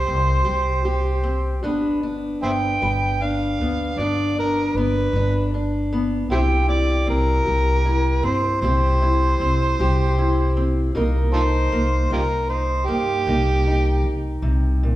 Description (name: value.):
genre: acoustic country blues, solo or duo.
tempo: 52 BPM (dotted quarters).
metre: 12/8.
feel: straight.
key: unclear.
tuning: A4 = 440 Hz.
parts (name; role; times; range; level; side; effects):
overdriven harmonica; melody; 0.0-14.4 s; F4 to G5; -23 LUFS; right 2 dB; none.
fingerpicked steel-string acoustic guitar; accompaniment; 0.0-15.0 s; G2 to B4; -24 LUFS; left 1 dB; none.
upright bass; bass; 0.0-15.0 s; G1 to G2; -21 LUFS; equal; none.
room: wet recital hall reverb, RT60 1.7 s.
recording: recorded in a church or concert hall.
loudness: -18 LUFS.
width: side -15 dB against mid.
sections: 0.0-15.0 A section.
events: none.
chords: 0.0 C5; 1.6 G; 6.3 C; 10.9 Cm7.